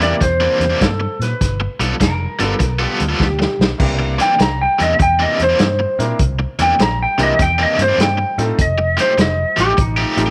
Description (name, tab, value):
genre	electric blues shuffle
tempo	100 BPM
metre	4/4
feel	swing 66% on 8ths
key	C mixolydian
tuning	A4 = 444 Hz
part	clean lap steel guitar	melody	0.0-10.3 s	Eb4 to Bb5	-19 LUFS	equal	none
part	bright upright piano	accompaniment	0.0-10.3 s	A3 to Bb4	-26 LUFS	equal	none
part	cranked stack guitar	riff	0.0-10.3 s	C3 to A4	-23 LUFS	equal	overdrive, tremolo
part	fingered electric bass	bass	0.0-10.3 s	F1 to Bb2	-23 LUFS	equal	none
part	vintage drum kit	drums	0.0-10.3 s	crash cymbal, hi-hat, kick drum, snare drum	-22 LUFS	equal	none
part	electric guitar through a small old amp	second line	2.0-3.7 s	F4 to Bb4	-28 LUFS	equal	subtle chorus
room	light reverb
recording	none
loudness	-16 LUFS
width	mono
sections	0.0-3.8 A section; 3.8-10.3 B section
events	drum fill 3.2-3.8; electric slide guitar solo 3.8-10.3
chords	0.0 C9; 1.4 G9; 3.8 C9; 8.6 F9